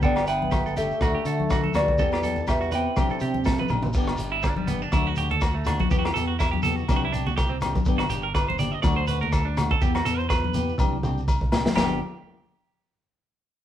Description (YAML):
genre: highlife guitar band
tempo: 123 BPM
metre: 4/4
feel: swing 55% on 16ths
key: G major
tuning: A4 = 440 Hz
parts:
  - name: mellow electric guitar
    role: melody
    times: 0.0-3.7 s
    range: A4 to G5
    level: -27 LUFS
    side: left 1 dB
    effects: none
  - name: clear trombone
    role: second line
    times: 0.0-3.7 s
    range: G3 to C4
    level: -33 LUFS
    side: equal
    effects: none
  - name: clean electric guitar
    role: accompaniment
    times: 0.0-12.0 s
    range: E3 to G4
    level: -32 LUFS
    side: left 4 dB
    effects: none
  - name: clean electric guitar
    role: arpeggios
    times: 0.0-12.0 s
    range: G3 to Eb5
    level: -29 LUFS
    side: right 7 dB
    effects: spring reverb
  - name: fingered electric bass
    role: bass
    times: 0.0-12.0 s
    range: G1 to D3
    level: -29 LUFS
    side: right 1 dB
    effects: none
  - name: crunchy breakbeat drum kit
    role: drums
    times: 0.0-11.9 s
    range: china cymbal, crash cymbal, hi-hat, kick drum, rim click, snare drum, toms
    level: -26 LUFS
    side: equal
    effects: none
  - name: shekere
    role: percussion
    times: 0.0-12.0 s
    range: none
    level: -37 LUFS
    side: left 1 dB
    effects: none
  - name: agogo bells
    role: percussion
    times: 0.2-11.9 s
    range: none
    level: -32 LUFS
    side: left 3 dB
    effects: none
  - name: congas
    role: percussion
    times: 0.4-12.0 s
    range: none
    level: -31 LUFS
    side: left 4 dB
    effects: none
room: moderate studio reverb, RT60 0.7 s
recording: band playing live in one room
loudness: -21 LUFS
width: side -11 dB against mid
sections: 0.0-4.0 A section; 4.0-11.8 B section; 11.8-13.6 C section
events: drum fill 3.5-4.0, 10.8-11.8; clean electric guitar solo 4.0-11.8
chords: 0.0 G; 1.0 D; 2.0 Em; 3.0 Cadd9; 4.0 G; 4.9 D; 5.9 Em; 6.9 Cadd9; 7.9 G; 8.8 D; 9.8 Em; 10.8 Cadd9; 11.8 G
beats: | 0.03 0.52 1.01 1.50 | 1.99 2.48 2.97 3.46 | 3.95 4.44 4.93 5.42 | 5.91 6.40 6.89 7.38 | 7.87 8.36 8.85 9.34 | 9.82 10.31 10.80 11.29 | 11.77